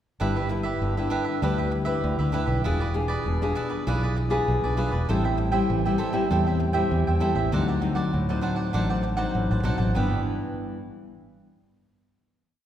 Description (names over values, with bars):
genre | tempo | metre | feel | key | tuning
samba | 98 BPM | 4/4 | straight | G major | A4 = 439 Hz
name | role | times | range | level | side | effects
cavaquinho | accompaniment | 0.2-10.2 s | D4 to G5 | -30 LUFS | right 5 dB | none
nylon-string guitar | accompaniment | 0.2-10.8 s | G2 to B4 | -27 LUFS | left 2 dB | none
fingered electric bass | bass | 0.2-10.2 s | E1 to E2 | -26 LUFS | equal | none
room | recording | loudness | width
wet scoring stage reverb, RT60 1.8 s | recorded in a church or concert hall | -22 LUFS | side -10 dB against mid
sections
0.2-10.0 A section; 10.0-12.4 final chord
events
none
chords
0.2 G6; 2.6 E7b9; 5.1 Am7; 7.5 D7b9; 10.0 G6